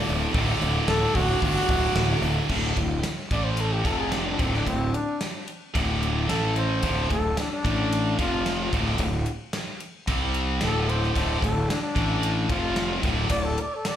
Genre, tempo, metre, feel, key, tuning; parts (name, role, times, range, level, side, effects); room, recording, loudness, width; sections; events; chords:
hard rock; 111 BPM; 4/4; straight; A4 = 440 Hz
breathy flugelhorn; melody; 0.0-14.0 s; C4 to D5; -29 LUFS; equal; slapback echo, tape echo
high-gain distorted guitar; riff; 0.0-13.5 s; D2 to C4; -27 LUFS; equal; distortion
fuzz fingered electric bass; bass; 0.1-13.6 s; D1 to C2; -26 LUFS; equal; overdrive
gated 80s drum kit; drums; 0.1-14.0 s; crash cymbal, hi-hat, kick drum, ride cymbal, snare drum; -30 LUFS; equal
studio reverb; live gig heard through the venue's PA, club reverb; -22 LUFS; side -10 dB against mid
0.0-2.5 A section; 2.5-14.0 B section
flugelhorn solo 2.5-14.0
0.0 D; 2.5 D5; 3.3 A5; 3.9 F5; 4.4 D5; 6.3 A5; 6.8 D5; 7.6 A5; 8.2 F5; 8.7 D5; 10.1 C5; 10.6 D5; 12.0 A5; 12.5 F5; 13.0 D5